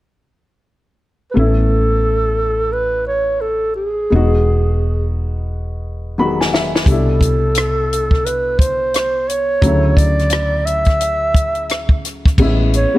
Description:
R&B, neo-soul; 87 BPM; 4/4; swing 61% on 16ths; A major; A4 = 440 Hz
breathy clarinet; melody; 1.3-12.9 s; G#4 to E5; -18 LUFS; right 1 dB; slapback echo
warm upright piano; accompaniment; 1.3-13.0 s; B2 to B5; -21 LUFS; left 2 dB
woody fretless electric bass; bass; 1.4-12.8 s; E1 to D2; -18 LUFS; equal
compact cocktail drum kit; drums; 6.4-12.9 s; crash cymbal, hi-hat, kick drum, rim click, snare drum; -15 LUFS; equal
small room ambience; -14 LUFS; side -16 dB against mid
0.0-1.4 A section; 1.4-12.4 B section
upright piano fill 5.8-6.9; drum fill 6.2-6.9
0.0 N.C.; 1.4 Aadd9; 4.1 Emaj9; 6.9 Cmaj9; 9.6 Dmaj9; 12.4 Amaj9

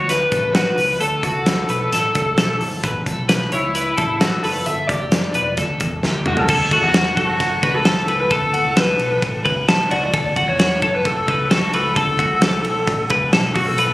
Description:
jangly indie pop; 132 BPM; 4/4; straight; D major; A4 = 440 Hz
lead guitar through a small cranked amp; melody; 0.0-13.9 s; E4 to E5; -21 LUFS; left 1 dB; overdrive, analog delay
twelve-string electric guitar; arpeggios; 0.0-13.9 s; F#4 to C#5; -21 LUFS; left 1 dB; lush chorus
vintage muted fingered electric bass; bass; 0.0-13.9 s; E1 to F#2; -26 LUFS; equal
big rock drum kit; drums; 0.1-13.9 s; crash cymbal, hi-hat, kick drum, ride cymbal, snare drum, toms; -20 LUFS; equal
small room ambience; recorded on a phone in the room, club reverb, compression; -15 LUFS; side -17 dB against mid
0.0-6.5 A section; 6.5-13.9 B section
drum fill 6.0-6.5
0.0 Bm7; 1.0 Dmaj7; 2.8 A; 4.7 G; 6.5 D6

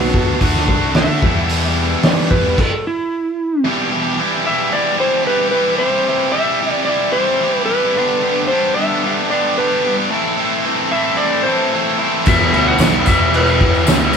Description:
classic rock; 112 BPM; 4/4; straight; E minor; A4 = 443 Hz
electric slide guitar; melody; 0.0-13.8 s; E4 to F#5; -18 LUFS; equal
tonewheel organ; sustained chords; 0.0-2.6, 12.3-14.2 s; A3 to B4; -31 LUFS; right 1 dB
tight distorted guitar; riff; 0.0-14.2 s; E2 to G4; -17 LUFS; equal; distortion
fuzz fingered electric bass; bass; 0.0-2.6, 12.3-14.2 s; B1 to E3; -20 LUFS; left 1 dB; overdrive
cloth-damped thuddy drum kit; drums; 0.1-2.7, 12.3-14.0 s; crash cymbal, hi-hat, kick drum, snare drum; -15 LUFS; equal
crunchy overdriven guitar; riff; 12.3-14.1 s; E2 to E3; -20 LUFS; equal
tambourine; percussion; 12.3-14.2 s; -30 LUFS; left 6 dB
moderate stone room reverb, RT60 1.1 s; band playing live in one room; -13 LUFS; side -6 dB against mid
0.0-3.7 A section; 3.7-14.2 B section
electric slide guitar solo 0.0-3.7; stop 2.6-3.7
0.4 D; 1.2 Em; 5.8 C; 8.0 G; 10.1 Am; 12.3 Em

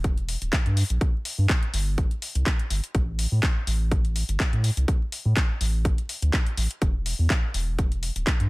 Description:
deep house; 124 BPM; 4/4; swing 54% on 16ths; A4 = 441 Hz
round analog bass; bass; 0.0-8.5 s; D1 to A2; -24 LUFS; equal; sidechain pumping
electronic kick drum; drums; 0.0-8.4 s; -23 LUFS; equal
house drum kit; drums; 0.0-8.5 s; handclaps, hi-hat; -30 LUFS; left 1 dB
little or no reverb; dense, heavily limited modern master, vinyl crackle; -22 LUFS; side -23 dB against mid
0.0-8.5 A section

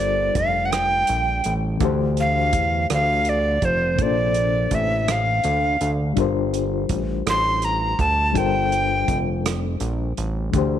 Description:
slow six-eight R&B; 55 BPM (dotted quarters); 6/8; straight; G dorian; A4 = 439 Hz
breathy bright alto recorder; melody; 0.0-9.2 s; C5 to C6; -21 LUFS; equal; slapback echo
reed electric piano; accompaniment; 0.0-10.8 s; C3 to C5; -26 LUFS; left 11 dB; fast tremolo
fat analog bass; bass; 0.0-10.8 s; F1 to E2; -24 LUFS; right 1 dB
warm soul drum kit; drums; 0.4-10.7 s; hi-hat, kick drum, rim click; -27 LUFS; right 4 dB
light reverb, studio reverb; 1960s-style stereo; -19 LUFS; side -10 dB against mid
0.0-10.8 A section
0.0 Gm11; 1.8 D7sus4; 4.0 Bbmaj9; 6.2 Gm11

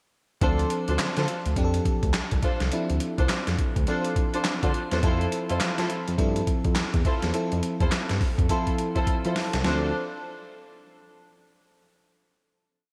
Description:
R&B, new jack swing; 104 BPM; 4/4; swing 61% on 16ths; D minor; A4 = 439 Hz
FM electric piano with soft pad layer; accompaniment; 0.4-9.9 s; F3 to A4; -33 LUFS; equal; chorus
muted studio string section; stabs; 0.4-9.9 s; D4 to C5; -34 LUFS; equal; digital delay
smooth synth bass; bass; 0.4-9.9 s; C2 to F3; -30 LUFS; equal
boom bap sampler-style drum kit; drums; 0.4-9.8 s; handclaps, hi-hat, kick drum, snare drum; -29 LUFS; equal; gated reverb
moderate plate reverb, RT60 3.2 s; bright 1980s-style digital production; -25 LUFS; mono
0.4-9.6 verse; 9.6-12.0 final chord
drum fill 8.5-9.6
0.4 Dm7; 5.0 Fmaj7; 9.6 Dm7

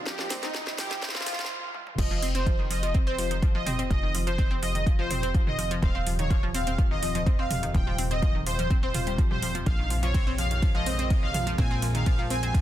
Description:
melodic techno; 125 BPM; 4/4; straight; F minor; A4 = 438 Hz
dark analog pad; sustained chords; 0.0-1.5, 10.4-12.6 s; G3 to Eb5; -42 LUFS; equal; chorus, sidechain pumping
analog pluck; arpeggios; 0.0-12.6 s; Eb3 to F5; -33 LUFS; equal; chorus, sidechain pumping, ping-pong delay
analog drone; drone; 0.5-12.6 s; F2 to C3; -40 LUFS; left 1 dB; chorus, sidechain pumping
riser; sound effects; 0.0-1.5 s; -40 LUFS; right 2 dB
soft supersaw; melody; 0.1-12.5 s; Eb4 to Ab5; -32 LUFS; equal; phaser, sidechain pumping, ping-pong delay
electronic kick drum; drums; 0.1-12.6 s; -24 LUFS; equal; high-pass filter on kick
house drum kit; drums; 0.1-12.6 s; crash cymbal, hi-hat, ride cymbal, snare drum, toms; -34 LUFS; right 1 dB; sidechain pumping on hats, sidechain pumping on toms, sidechain pumping on cymbals
plucky analog bass; bass; 2.0-12.6 s; Eb1 to Bb1; -30 LUFS; equal; sidechain pumping
digital ambience; dense, heavily limited modern master, high-pass filter; -24 LUFS; side -13 dB against mid
0.0-2.0 A section; 2.0-12.6 B section
build-up 0.0-2.0; drum fill 0.0-1.5, 1.7; riser 0.0-1.5; stop 1.5-2.0; drop 2.0-12.6
0.0 Eb; 2.0 F5; 5.8 Eb; 9.7 Bbm7

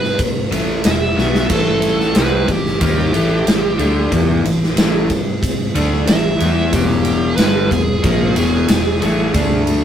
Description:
blues rock power trio and southern rock; 92 BPM; 4/4; straight; A4 = 441 Hz
dark smooth lead guitar; second line; 0.0-9.6 s; G4 to E5; -21 LUFS; right 2 dB; overdrive
huge arena drum kit; drums; 0.0-9.8 s; crash cymbal, kick drum, ride cymbal, snare drum; -17 LUFS; equal
crunchy overdriven guitar; riff; 0.5-9.8 s; E2 to E4; -18 LUFS; left 1 dB
vintage muted fingered electric bass; bass; 0.5-9.8 s; E1 to E2; -20 LUFS; equal
light reverb; rough rehearsal-room recording, tube saturation; -13 LUFS; side -9 dB against mid
0.0-9.8 A section
lead electric guitar solo 0.0-9.8; drum fill 1.2-1.5
0.0 E5; 1.5 A5; 6.7 E

